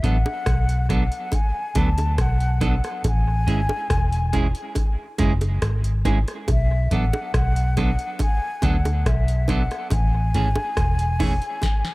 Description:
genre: roots reggae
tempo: 70 BPM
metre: 4/4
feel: straight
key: B dorian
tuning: A4 = 440 Hz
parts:
  - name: mellow hollow silver concert flute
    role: melody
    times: 0.0-11.9 s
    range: E5 to A5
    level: -28 LUFS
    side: left 2 dB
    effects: dub echo
  - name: clean electric guitar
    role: accompaniment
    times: 0.0-11.3 s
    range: E3 to A4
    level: -28 LUFS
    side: right 3 dB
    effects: dub echo
  - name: vintage muted fingered electric bass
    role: bass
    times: 0.0-11.4 s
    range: E1 to D2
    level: -21 LUFS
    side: equal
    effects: none
  - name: booming analog drum machine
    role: drums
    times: 0.0-11.9 s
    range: hi-hat, kick drum, rim click, snare drum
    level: -22 LUFS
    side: equal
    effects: none
  - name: bongos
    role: percussion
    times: 0.3-11.8 s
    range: none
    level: -31 LUFS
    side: right 2 dB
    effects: none
room: little or no reverb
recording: echo-heavy mix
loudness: -19 LUFS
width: side -21 dB against mid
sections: 0.0-11.9 A section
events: drum fill 11.6-11.9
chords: 0.0 Bm7; 3.0 Amaj7 (rootless); 6.5 Bm7; 9.9 Amaj7

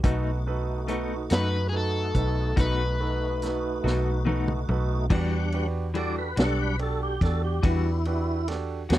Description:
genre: slow blues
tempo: 47 BPM (dotted quarters)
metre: 12/8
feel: straight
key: E minor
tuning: A4 = 440 Hz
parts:
  - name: bright concert grand piano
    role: accompaniment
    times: 0.0-9.0 s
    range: D4 to D5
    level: -33 LUFS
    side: right 7 dB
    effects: none
  - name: clean electric guitar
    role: accompaniment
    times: 0.0-9.0 s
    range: B2 to F#4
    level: -31 LUFS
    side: left 6 dB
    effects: tremolo
  - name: tonewheel organ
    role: sustained chords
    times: 0.0-8.5 s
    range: G3 to F#5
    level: -32 LUFS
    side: equal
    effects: chorus vibrato, slow rotary speaker
  - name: vintage muted fingered electric bass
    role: bass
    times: 0.0-9.0 s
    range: B1 to F#2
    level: -27 LUFS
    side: equal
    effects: none
  - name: vintage drum kit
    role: drums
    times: 0.0-9.0 s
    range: crash cymbal, hi-hat, kick drum, ride cymbal, snare drum, toms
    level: -26 LUFS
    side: equal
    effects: none
  - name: crunchy overdriven guitar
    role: melody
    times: 1.3-4.2 s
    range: G#4 to B4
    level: -30 LUFS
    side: left 3 dB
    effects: none
room: little or no reverb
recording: dry, close 1970s-style studio recording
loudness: -24 LUFS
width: side -14 dB against mid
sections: 0.0-5.1 A section; 5.1-9.0 B section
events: drum fill 3.8-5.1; tonewheel organ solo 5.1-9.0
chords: 0.0 B7; 5.1 Em9

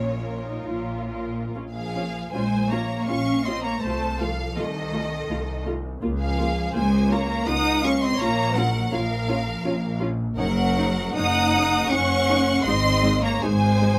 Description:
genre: classical, slow romantic movement for string orchestra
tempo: 81 BPM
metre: 3/4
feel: uneven beats, rubato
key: Bb minor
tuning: A4 = 437 Hz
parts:
  - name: bright symphonic violin section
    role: melody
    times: 0.0-14.0 s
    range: Db5 to Eb6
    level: -30 LUFS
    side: equal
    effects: none
  - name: warm symphonic violin section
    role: second line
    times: 0.0-14.0 s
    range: F4 to Gb5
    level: -33 LUFS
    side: equal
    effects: none
  - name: dark symphonic viola section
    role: accompaniment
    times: 0.0-13.9 s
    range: Ab3 to F4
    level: -32 LUFS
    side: equal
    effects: none
  - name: clear symphonic double bass section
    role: bass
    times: 0.0-14.0 s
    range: Gb1 to Db2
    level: -29 LUFS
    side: equal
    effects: none
  - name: rich symphonic cello section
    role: bass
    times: 0.0-14.0 s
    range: Bb2 to Eb4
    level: -28 LUFS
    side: equal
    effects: none
room: light reverb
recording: none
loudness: -23 LUFS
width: mono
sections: 0.0-1.5 A section; 1.5-14.0 B section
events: none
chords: 0.0 Bbm; 3.8 F7/C; 6.0 Bbm/Db; 8.2 Bbm; 10.4 Ebm7/Gb; 12.7 Ab

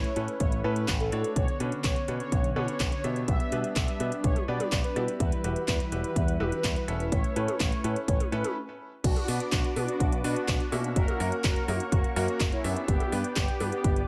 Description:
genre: italo disco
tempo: 125 BPM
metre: 4/4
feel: straight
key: B minor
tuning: A4 = 439 Hz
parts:
  - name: mellow synth brass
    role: melody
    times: 0.0-14.0 s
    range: A#3 to E5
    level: -36 LUFS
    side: equal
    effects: chorus, vintage 12-bit sampler grit, delay
  - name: warm analog pad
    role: sustained chords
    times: 0.0-14.1 s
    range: D3 to D6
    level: -40 LUFS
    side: equal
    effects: chorus, vintage 12-bit sampler grit
  - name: bright concert grand piano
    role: stabs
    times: 0.0-14.1 s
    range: A#3 to E5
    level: -38 LUFS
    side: equal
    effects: none
  - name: picked electric bass with an envelope filter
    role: bass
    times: 0.0-14.0 s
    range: E1 to B2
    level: -34 LUFS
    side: equal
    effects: tube saturation
  - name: house drum kit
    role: drums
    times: 0.0-14.1 s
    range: crash cymbal, handclaps, hi-hat, toms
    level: -37 LUFS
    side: equal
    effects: none
  - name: electronic kick drum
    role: drums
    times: 0.4-13.9 s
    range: none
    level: -30 LUFS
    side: equal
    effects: none
room: light reverb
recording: none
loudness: -28 LUFS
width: mono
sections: 0.0-9.0 A section; 9.0-14.1 B section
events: stop 8.6-9.0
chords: 0.0 Aadd9; 1.4 Bmadd9; 3.3 G/B; 5.2 Emadd9; 7.1 Aadd9; 9.0 Bm; 11.0 F#; 12.9 G

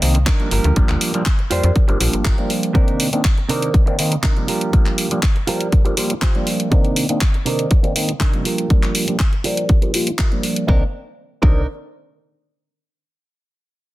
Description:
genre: filtered disco house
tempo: 121 BPM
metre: 4/4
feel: straight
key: C minor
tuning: A4 = 437 Hz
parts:
  - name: overdriven clav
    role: accompaniment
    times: 0.0-11.6 s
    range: Eb3 to D5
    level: -22 LUFS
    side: equal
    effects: phaser, sidechain pumping, low-pass filter
  - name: direct-recorded clean electric guitar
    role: riff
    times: 0.0-11.7 s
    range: C3 to C5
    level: -26 LUFS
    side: right 4 dB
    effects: sidechain pumping, low-pass filter
  - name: slap-like FM bass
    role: bass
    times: 0.0-2.3, 10.7-11.7 s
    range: G1 to F2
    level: -18 LUFS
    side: equal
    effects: sidechain pumping, low-pass filter
  - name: house drum kit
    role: drums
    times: 0.0-10.7 s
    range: handclaps, hi-hat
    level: -23 LUFS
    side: equal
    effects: sidechain pumping on hats
  - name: electronic kick drum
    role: drums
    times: 0.3-11.5 s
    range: none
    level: -16 LUFS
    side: equal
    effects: none
room: little or no reverb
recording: dense, heavily limited modern master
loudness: -15 LUFS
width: side -17 dB against mid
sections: 0.0-10.7 A section; 10.7-12.7 B section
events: filter sweep 0.0-10.7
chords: 0.0 Cm9; 0.5 Gm7; 2.8 Cm9; 4.5 Gm7; 6.7 Cm9; 8.5 Gm7; 10.7 Cm9

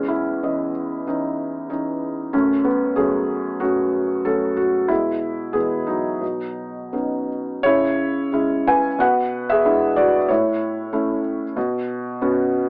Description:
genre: classical, lyrical solo piano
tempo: 80-96 BPM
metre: 4/4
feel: rubato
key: C# minor from 7.7 s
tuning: A4 = 441 Hz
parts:
  - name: felt-muted upright piano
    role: solo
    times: 0.0-12.7 s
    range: E2 to G#5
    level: -21 LUFS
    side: equal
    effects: none
room: little or no reverb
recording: AM radio sound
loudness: -21 LUFS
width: mono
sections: 0.0-7.7 A section; 7.7-12.7 B section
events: none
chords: 0.0 C#madd9/E; 2.3 F#m; 4.9 E/B; 6.2 Badd9; 7.7 C#m; 9.0 E7/B; 10.3 A; 11.6 Bsus2

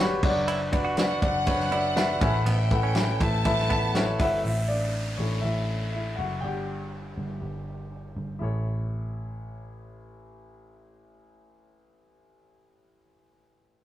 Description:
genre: piano-driven pop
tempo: 121 BPM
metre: 4/4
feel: straight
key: A mixolydian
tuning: A4 = 441 Hz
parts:
  - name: bright concert grand piano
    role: accompaniment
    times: 0.0-13.8 s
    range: A1 to G5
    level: -29 LUFS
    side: left 1 dB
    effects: none
  - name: direct-recorded clean electric guitar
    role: riff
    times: 0.0-4.0 s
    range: B3 to F#4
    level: -33 LUFS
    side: right 4 dB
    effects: none
  - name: vintage muted picked electric bass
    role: bass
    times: 0.0-13.2 s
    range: F#1 to A1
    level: -29 LUFS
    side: equal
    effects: none
  - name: natural country drum kit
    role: drums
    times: 0.2-4.3 s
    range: crash cymbal, hi-hat, kick drum, ride cymbal, snare drum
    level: -28 LUFS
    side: equal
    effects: none
  - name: warm studio violin section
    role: melody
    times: 0.7-4.2 s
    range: D5 to A5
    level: -30 LUFS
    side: left 1 dB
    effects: none
  - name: downlifter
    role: sound effects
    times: 4.4-8.4 s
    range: none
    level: -40 LUFS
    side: equal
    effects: none
room: wet small room reverb, RT60 0.5 s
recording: rough rehearsal-room recording, tube saturation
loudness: -24 LUFS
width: side -12 dB against mid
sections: 0.0-4.4 A section; 4.4-8.4 B section; 8.4-12.4 C section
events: grand piano solo 4.4-8.4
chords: 0.2 Bm/F#; 2.2 Asus2; 4.4 A; 6.4 Dadd11/G; 8.4 A

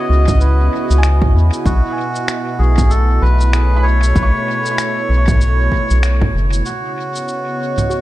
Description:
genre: ambient dub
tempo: 96 BPM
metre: 4/4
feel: swing 59% on 16ths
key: C# minor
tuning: A4 = 440 Hz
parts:
  - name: melodica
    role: melody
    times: 0.0-8.0 s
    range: F#4 to D#5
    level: -21 LUFS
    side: equal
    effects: vintage 12-bit sampler grit, analog delay
  - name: warm analog pad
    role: sustained chords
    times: 0.0-8.0 s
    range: B2 to D#5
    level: -23 LUFS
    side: right 2 dB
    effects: chorus
  - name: felt-muted upright piano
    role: arpeggios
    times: 0.0-8.0 s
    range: E4 to C#6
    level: -28 LUFS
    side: right 3 dB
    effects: low-pass filter, analog delay
  - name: round analog bass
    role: bass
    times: 0.1-6.6 s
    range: F#1 to E2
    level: -12 LUFS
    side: equal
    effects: none
  - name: electronic congas, shaker and finger snaps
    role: drums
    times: 0.3-8.0 s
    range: none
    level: -22 LUFS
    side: right 2 dB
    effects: studio reverb, dub echo
  - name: electronic kick drum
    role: drums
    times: 0.3-6.3 s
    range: none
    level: -18 LUFS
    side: equal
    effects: overdrive, studio reverb
  - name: drifting glass-harmonics texture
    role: texture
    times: 6.9-8.0 s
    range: C#5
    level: -25 LUFS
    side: right 2 dB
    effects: chorus, built-in reverb
room: little or no reverb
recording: echo-heavy mix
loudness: -12 LUFS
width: side -16 dB against mid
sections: 0.0-6.7 A section; 6.7-8.0 B section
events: band accent 6.0-6.3; filter sweep on felt piano 6.7-8.0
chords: 0.0 C#m11; 1.7 B9sus4; 6.7 C#m11

